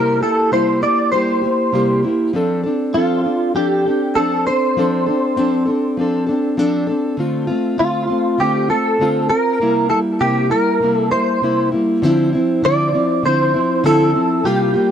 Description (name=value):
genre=indie pop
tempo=99 BPM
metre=4/4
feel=swing 55% on 16ths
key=unclear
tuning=A4 = 440 Hz
part: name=direct-recorded clean electric guitar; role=melody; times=0.0-14.9 s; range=F4 to D5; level=-17 LUFS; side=right 1 dB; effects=ensemble chorus, tape echo
part: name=fingerpicked plugged-in steel-string acoustic guitar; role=accompaniment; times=0.0-14.9 s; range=C3 to A4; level=-17 LUFS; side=left 1 dB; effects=lush chorus, vibrato effect
room=light reverb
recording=dry, close 1970s-style studio recording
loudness=-14 LUFS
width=side -8 dB against mid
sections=0.0-12.0 A section; 12.0-14.9 B section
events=none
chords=0.0 C7; 2.3 F6; 7.2 Dm7; 9.6 C7; 12.0 Dm9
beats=0.52 1.13 1.74 | 2.34 2.95 3.55 4.16 | 4.76 5.37 5.98 6.58 | 7.19 7.79 8.40 9.00 | 9.61 10.21 10.81 11.42 | 12.02 12.63 13.23 13.83 | 14.44